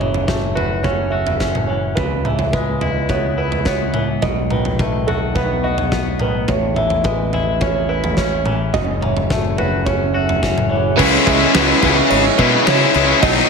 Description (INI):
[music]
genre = post-rock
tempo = 106 BPM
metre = 4/4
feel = straight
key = unclear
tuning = A4 = 439 Hz
[part]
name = felt-muted upright piano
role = arpeggios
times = 0.0-13.5 s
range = A4 to E5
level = -22 LUFS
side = right 7 dB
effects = slapback echo
[part]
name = twangy electric guitar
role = arpeggios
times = 0.0-13.5 s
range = F#2 to F#4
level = -23 LUFS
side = left 4 dB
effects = warbly pitch drift, slapback echo
[part]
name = growling fingered electric bass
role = bass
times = 0.0-13.4 s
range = F#1 to C#3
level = -22 LUFS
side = left 1 dB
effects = overdrive
[part]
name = big rock drum kit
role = drums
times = 0.0-13.4 s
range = crash cymbal, kick drum, snare drum, toms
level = -20 LUFS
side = equal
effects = none
[part]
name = ethereal airy pad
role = sustained chords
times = 3.0-13.5 s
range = C#3 to G#5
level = -27 LUFS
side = left 1 dB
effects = ensemble chorus, built-in reverb, phaser
[part]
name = distorted electric guitar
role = riff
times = 11.0-13.5 s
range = B2 to E4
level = -15 LUFS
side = left 14 dB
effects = overdrive
[part]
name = raw garage guitar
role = riff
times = 11.0-13.5 s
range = B2 to D#4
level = -18 LUFS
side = right 10 dB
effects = overdrive
[sound]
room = light reverb, studio reverb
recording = none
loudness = -14 LUFS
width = side -5 dB against mid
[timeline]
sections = 0.0-11.0 A section; 11.0-13.5 B section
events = none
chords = 0.0 F#m7; 2.0 C#m7; 4.2 B7; 6.5 Amaj7; 8.7 F#m7; 11.0 C#m7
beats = 0.27 0.84 1.40 | 1.97 2.53 3.10 3.66 | 4.22 4.79 5.35 5.92 | 6.48 7.04 7.61 8.17 | 8.74 9.30 9.86 10.42 | 10.98 11.54 12.11 12.66 | 13.22